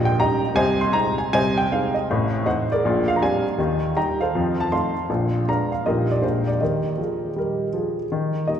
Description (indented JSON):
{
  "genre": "jazz, stride piano",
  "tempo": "159 BPM",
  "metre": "4/4",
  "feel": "swing 65% on 8ths",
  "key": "Eb major",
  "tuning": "A4 = 440 Hz",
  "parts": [
    { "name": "warm upright piano", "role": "solo", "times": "0.0-8.6 s", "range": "A1 to C6", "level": "-19 LUFS", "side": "equal", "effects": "none" }
  ],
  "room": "wet church reverb, RT60 3.9 s",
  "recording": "recorded in a church or concert hall",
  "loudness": "-19 LUFS",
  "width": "side -9 dB against mid",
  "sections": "0.0-8.1 A section",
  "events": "none",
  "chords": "0.0 Eb7/Bb; 0.6 Ab/C; 2.1 Adim; 2.8 Bb13; 3.6 Eb; 4.3 F7; 5.1 Bb7b9; 5.9 Eb/Bb; 6.2 Bb7; 6.6 Eb",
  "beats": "0.19 | 0.56 0.94 1.32 1.70 | 2.08 2.45 2.83 3.21 | 3.59 3.97 4.34 4.72 | 5.10 5.48 5.86 6.23 | 6.61 6.99 7.37 7.74 | 8.12 8.50"
}